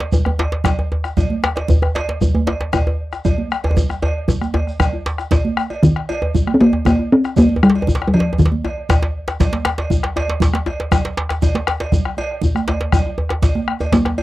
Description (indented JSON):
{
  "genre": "west african traditional, West African drum ensemble",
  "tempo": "117 BPM",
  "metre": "4/4",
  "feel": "straight",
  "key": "Eb major pentatonic",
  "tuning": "A4 = 442 Hz",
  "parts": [
    { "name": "congas", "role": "percussion", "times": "0.0-14.2 s", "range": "none", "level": "-24 LUFS", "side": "right 5 dB", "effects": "none" },
    { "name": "djembe", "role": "percussion", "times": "0.0-14.2 s", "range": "none", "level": "-20 LUFS", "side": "right 1 dB", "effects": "none" },
    { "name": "bombo", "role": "percussion", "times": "0.1-14.2 s", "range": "none", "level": "-19 LUFS", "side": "left 1 dB", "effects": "none" },
    { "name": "djembe", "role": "percussion", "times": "0.1-14.2 s", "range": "none", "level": "-25 LUFS", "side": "left 2 dB", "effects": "none" },
    { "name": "shekere", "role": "percussion", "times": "0.1-14.0 s", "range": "none", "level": "-28 LUFS", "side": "right 1 dB", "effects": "none" },
    { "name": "cowbell", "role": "percussion", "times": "0.4-14.2 s", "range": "none", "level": "-28 LUFS", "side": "right 3 dB", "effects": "none" },
    { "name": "talking drum", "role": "melody", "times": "5.8-9.4, 13.9-14.2 s", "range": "Eb3 to C4", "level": "-13 LUFS", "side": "equal", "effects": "none" }
  ],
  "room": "light reverb",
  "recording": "dry, close 1970s-style studio recording",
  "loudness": "-15 LUFS",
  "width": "side -16 dB against mid",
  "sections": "0.0-5.8 A section; 5.8-14.2 B section",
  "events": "speeding up 0.0-14.2; drum fill 3.8-5.8",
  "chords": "none"
}